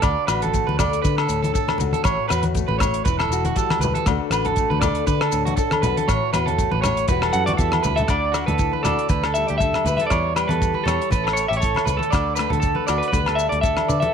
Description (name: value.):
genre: highlife guitar band.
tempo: 119 BPM.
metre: 4/4.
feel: swing 55% on 16ths.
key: D major.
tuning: A4 = 440 Hz.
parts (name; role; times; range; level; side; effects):
nylon-string guitar; accompaniment; 0.0-14.1 s; A2 to C#5; -27 LUFS; left 13 dB; none.
electric guitar at the edge of break-up; arpeggios; 0.0-14.1 s; F#4 to D5; -24 LUFS; right 10 dB; slapback echo.
fingered electric bass; bass; 0.0-14.0 s; E1 to D3; -25 LUFS; equal; none.
damped 70s drum kit; drums; 0.0-14.1 s; hi-hat, kick drum, rim click; -25 LUFS; equal; none.
agogo bells; percussion; 0.0-13.9 s; none; -28 LUFS; left 14 dB; none.
maracas; percussion; 0.0-14.0 s; none; -35 LUFS; left 14 dB; none.
congas; percussion; 0.4-14.1 s; none; -28 LUFS; equal; none.
clean electric guitar; melody; 7.3-14.1 s; A4 to F#5; -24 LUFS; left 2 dB; warbly pitch drift, slapback echo.
room: light reverb, small room reverb.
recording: 1960s-style stereo with parts hard left and right.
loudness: -18 LUFS.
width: side -7 dB against mid.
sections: 0.0-8.1 A section; 8.1-14.1 B section.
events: drum fill 7.6-8.1.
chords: 0.0 D; 2.0 A6; 3.1 Emadd9; 4.1 D; 6.1 A6; 7.1 Emadd9; 8.1 Dadd9; 9.1 Gadd9/D; 10.1 Em; 11.1 A; 12.1 D; 13.1 Gadd9/D.